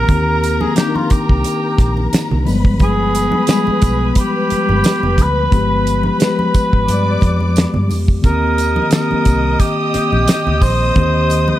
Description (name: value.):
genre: lush 1970s-style soul.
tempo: 88 BPM.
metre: 4/4.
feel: swing 54% on 16ths.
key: unclear.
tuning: A4 = 440 Hz.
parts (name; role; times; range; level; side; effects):
dark cor anglais; melody; 0.0-11.6 s; F4 to C5; -18 LUFS; right 1 dB; none.
muted studio string section; second line; 0.0-11.6 s; Bb4 to Eb6; -24 LUFS; left 2 dB; none.
mellow tine electric piano; accompaniment; 0.0-11.6 s; Eb3 to G4; -19 LUFS; left 4 dB; phaser.
vintage muted fingered electric bass; bass; 0.0-11.5 s; F1 to G2; -18 LUFS; equal; none.
damped 70s drum kit; drums; 0.1-11.5 s; hi-hat, kick drum, snare drum; -15 LUFS; equal; none.
congas; percussion; 0.1-11.6 s; none; -26 LUFS; right 2 dB; none.
tambourine; percussion; 0.4-11.5 s; none; -34 LUFS; right 8 dB; none.
room: studio reverb.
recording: none.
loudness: -12 LUFS.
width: side -13 dB against mid.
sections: 0.0-11.6 A section.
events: none.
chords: 0.0 Eb6; 2.5 G7b9; 8.2 Eb6.